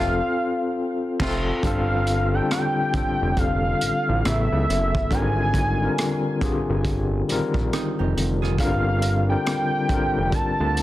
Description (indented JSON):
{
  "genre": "R&B, neo-soul",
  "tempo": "69 BPM",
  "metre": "4/4",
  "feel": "swing 60% on 16ths",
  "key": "unclear",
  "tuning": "A4 = 440 Hz",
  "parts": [
    { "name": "fat analog lead", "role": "melody", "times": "0.0-10.8 s", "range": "E5 to A5", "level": "-26 LUFS", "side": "equal", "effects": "chorus, plate reverb, tape echo" },
    { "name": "overdriven tine electric piano", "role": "accompaniment", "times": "0.0-10.8 s", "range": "C#3 to Bb4", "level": "-24 LUFS", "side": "left 2 dB", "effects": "fast tremolo, plate reverb" },
    { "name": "warm horn section", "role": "stabs", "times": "0.0-1.4 s", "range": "C3 to F4", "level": "-35 LUFS", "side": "right 2 dB", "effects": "plate reverb" },
    { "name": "fat analog bass", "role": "bass", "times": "0.0-10.8 s", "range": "F1 to D2", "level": "-24 LUFS", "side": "right 1 dB", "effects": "none" },
    { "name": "crunchy breakbeat drum kit", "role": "drums", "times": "1.2-10.8 s", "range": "crash cymbal, hi-hat, kick drum, rim click, snare drum", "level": "-27 LUFS", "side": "right 1 dB", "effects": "soft clipping on snare" },
    { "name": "hollow-body jazz guitar", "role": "second line", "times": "7.7-8.8 s", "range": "C4 to Ab4", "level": "-32 LUFS", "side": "right 10 dB", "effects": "plate reverb" }
  ],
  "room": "light reverb",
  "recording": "dense, heavily limited modern master",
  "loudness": "-20 LUFS",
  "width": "side -15 dB against mid",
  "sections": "0.0-1.6 A section; 1.6-10.8 B section",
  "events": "band accent 0.0-1.6",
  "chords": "0.0 F; 1.6 Gsus2; 4.2 Aadd9; 5.1 Abmaj9; 8.6 Gm9",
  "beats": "0.76 | 1.63 2.50 3.37 4.24 | 5.11 5.98 6.85 7.72 | 8.59 9.46 10.33"
}